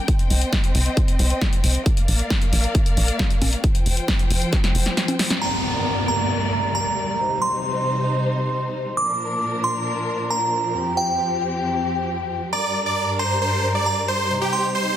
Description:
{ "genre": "uplifting trance", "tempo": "135 BPM", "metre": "4/4", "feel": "straight", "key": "unclear", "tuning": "A4 = 439 Hz", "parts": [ { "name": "dark symphonic string section", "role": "sustained chords", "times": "0.0-15.0 s", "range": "F2 to G5", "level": "-26 LUFS", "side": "left 1 dB", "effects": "sidechain pumping" }, { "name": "electronic kick drum", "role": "drums", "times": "0.1-4.6 s", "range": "none", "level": "-20 LUFS", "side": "equal", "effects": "none" }, { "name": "punchy analog drum machine", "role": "drums", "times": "0.1-5.4 s", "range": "congas, hi-hat, snare drum", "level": "-25 LUFS", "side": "left 1 dB", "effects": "sidechain pumping on hats, low-pass filter on hats, low-pass filter on snare, sidechain pumping on perc, low-pass filter on perc, low-pass filter on room" }, { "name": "tight sequencer bass", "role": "bass", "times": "0.3-4.9 s", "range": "F1 to C2", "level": "-20 LUFS", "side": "equal", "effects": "sidechain pumping" }, { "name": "glassy synth bell", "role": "second line", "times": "5.4-15.0 s", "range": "G5 to D6", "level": "-24 LUFS", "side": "right 2 dB", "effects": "chorus, tape echo" }, { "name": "downlifter", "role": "sound effects", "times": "5.4-9.0 s", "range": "none", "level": "-27 LUFS", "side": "right 1 dB", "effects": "none" }, { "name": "big supersaw lead", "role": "melody", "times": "12.5-15.0 s", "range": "G4 to D5", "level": "-22 LUFS", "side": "right 1 dB", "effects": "sidechain pumping, tape echo" } ], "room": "light reverb", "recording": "dense, heavily limited modern master", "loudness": "-19 LUFS", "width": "side -11 dB against mid", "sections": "0.0-5.4 A section; 5.4-15.0 B section", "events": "drum fill 4.5-5.4; kick drops out 5.0-5.4; band accent 5.3", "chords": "0.1 Cm; 1.9 Bb; 3.6 Fsus2; 5.4 Gm; 7.2 Cm; 9.0 Bb; 10.7 Fsus2; 12.5 Gm; 14.3 Cm" }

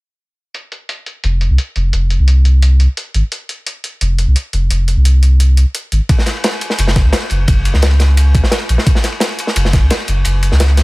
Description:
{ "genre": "liquid drum and bass", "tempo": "173 BPM", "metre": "4/4", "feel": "straight", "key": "F minor", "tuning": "A4 = 439 Hz", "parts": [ { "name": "electronic hi-hat", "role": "drums", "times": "0.5-10.8 s", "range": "none", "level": "-24 LUFS", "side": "equal", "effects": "low-pass filter on hats, small room ambience" }, { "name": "warm sub bass", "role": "bass", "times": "1.2-10.8 s", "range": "F1 to Db2", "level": "-10 LUFS", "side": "equal", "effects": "none" }, { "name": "crunchy breakbeat drum kit", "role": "drums", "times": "6.1-10.8 s", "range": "ride cymbal, snare drum", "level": "-18 LUFS", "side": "equal", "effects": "high-pass filter on cymbals, small room ambience, high-pass filter on snare, high-pass filter on room" }, { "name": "electronic kick drum", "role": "drums", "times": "6.1-9.8 s", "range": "none", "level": "-13 LUFS", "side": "equal", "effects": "overdrive, small room ambience" } ], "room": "small room ambience", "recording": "none", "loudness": "-11 LUFS", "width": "side -22 dB against mid", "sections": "0.5-10.8 A section", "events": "kick drops out 10.3-10.8", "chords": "none" }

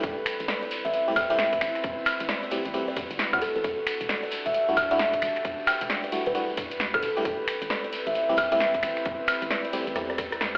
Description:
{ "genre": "UK garage, two-step garage", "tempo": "133 BPM", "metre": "4/4", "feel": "swing 62% on 16ths", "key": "unclear", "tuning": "A4 = 440 Hz", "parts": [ { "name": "airy breathy pad", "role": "sustained chords", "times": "0.0-10.6 s", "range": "G3 to B4", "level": "-38 LUFS", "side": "equal", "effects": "chorus, sidechain pumping" }, { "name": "FM electric piano", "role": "stabs", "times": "0.0-10.1 s", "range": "G3 to G4", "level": "-34 LUFS", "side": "equal", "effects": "chorus, tape echo" }, { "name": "hollow knocking FM bass", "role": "bass", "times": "0.0-10.6 s", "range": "E1 to A2", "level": "-46 LUFS", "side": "equal", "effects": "none" }, { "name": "electronic kick drum", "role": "drums", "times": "0.0-10.6 s", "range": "none", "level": "-36 LUFS", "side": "equal", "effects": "none" }, { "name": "punchy analog drum machine", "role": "drums", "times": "0.0-10.6 s", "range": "finger snaps, hi-hat, rim click, snare drum, woodblock", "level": "-30 LUFS", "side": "equal", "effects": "none" }, { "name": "shekere", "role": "percussion", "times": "0.0-10.6 s", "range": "none", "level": "-40 LUFS", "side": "equal", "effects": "none" }, { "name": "buzzing kalimba", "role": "melody", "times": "0.5-10.2 s", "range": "A4 to G5", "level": "-31 LUFS", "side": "equal", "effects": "tape echo" } ], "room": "wet studio reverb, RT60 0.6 s", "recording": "played on a big sound system in a bare room, stone room reverb, telephone sound", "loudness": "-27 LUFS", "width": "mono", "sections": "0.0-10.6 A section", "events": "drum fill 10.0-10.6", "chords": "0.0 Am7; 3.6 Em11; 7.3 Am7" }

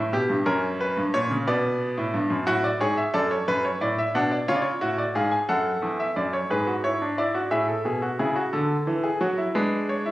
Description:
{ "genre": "classical, baroque-style 3-part fugue for grand piano", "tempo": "59 BPM (dotted quarters)", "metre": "6/8", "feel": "straight", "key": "B minor", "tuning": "A4 = 440 Hz", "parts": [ { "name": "bright baby grand piano", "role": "solo", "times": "0.0-10.1 s", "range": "E2 to G#5", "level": "-22 LUFS", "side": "equal", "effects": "none" } ], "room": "moderate recital hall reverb, RT60 1.4 s", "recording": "recorded on a phone in the room, club reverb, compression", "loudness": "-22 LUFS", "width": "side -16 dB against mid", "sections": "0.0-6.5 A section; 6.5-10.1 B section", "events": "none", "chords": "0.5 F#; 1.5 Bm; 2.5 F#m; 3.5 Bm/F#; 4.5 C#; 5.5 F#m; 6.5 E/G#; 7.5 Amaj7; 8.5 D; 9.6 G#dim" }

